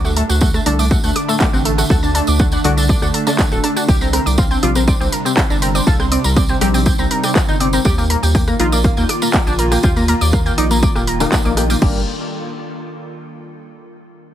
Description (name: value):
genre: melodic techno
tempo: 121 BPM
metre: 4/4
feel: straight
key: G minor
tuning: A4 = 440 Hz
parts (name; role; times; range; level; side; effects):
- fat analog lead; melody; 0.0-12.0 s; A3 to A4; -21 LUFS; equal; wide subtle chorus, sidechain pumping, ping-pong delay
- evolving wavetable pad; sustained chords; 0.0-12.1 s; C3 to F4; -24 LUFS; right 1 dB; chorus, built-in reverb, sidechain pumping
- analog pluck; arpeggios; 0.0-12.1 s; F4 to Bb6; -24 LUFS; equal; chorus, sidechain pumping, dub echo
- round analog bass; bass; 0.0-12.1 s; D1 to Eb2; -18 LUFS; equal; sidechain pumping
- tambourine; percussion; 0.0-11.8 s; none; -25 LUFS; right 3 dB; none
- techno drum kit; drums; 0.2-11.9 s; crash cymbal, handclaps, hi-hat, rim click; -22 LUFS; equal; overdrive, small room ambience
- electronic kick drum; drums; 0.4-11.9 s; none; -16 LUFS; equal; overdrive, small room ambience
- synth brass stab; stabs; 0.7-12.0 s; C3 to G4; -23 LUFS; left 3 dB; chorus, sidechain pumping, dub echo
room: little or no reverb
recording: heavily compressed radio sound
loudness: -13 LUFS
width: side -11 dB against mid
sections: 0.0-11.8 A section; 11.8-13.8 B section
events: drop 0.0-11.8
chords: 0.0 D; 3.9 Cmadd9; 7.9 Ebadd9; 11.8 G5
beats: 0.41 0.91 1.41 | 1.90 2.40 2.89 3.39 | 3.88 4.38 4.88 5.37 | 5.87 6.37 6.86 7.36 | 7.85 8.35 8.84 9.34 | 9.84 10.33 10.83 11.32 | 11.82